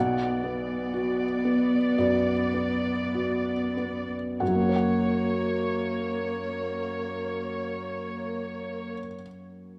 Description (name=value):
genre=cinematic, emotional film score for orchestra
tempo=46-62 BPM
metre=4/4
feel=rubato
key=unclear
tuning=A4 = 440 Hz
part: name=felt-muted upright piano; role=accompaniment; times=0.0-9.8 s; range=B1 to F#5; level=-30 LUFS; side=equal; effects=none
part: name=warm studio viola section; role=accompaniment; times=0.0-8.9 s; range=A#3 to D5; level=-32 LUFS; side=equal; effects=none
room=moderate scoring stage reverb, RT60 1.9 s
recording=close, detailed microphones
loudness=-28 LUFS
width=mono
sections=0.0-4.4 A section; 4.4-9.3 B section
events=slowing down 0.0-4.4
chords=0.0 Bm; 4.4 F#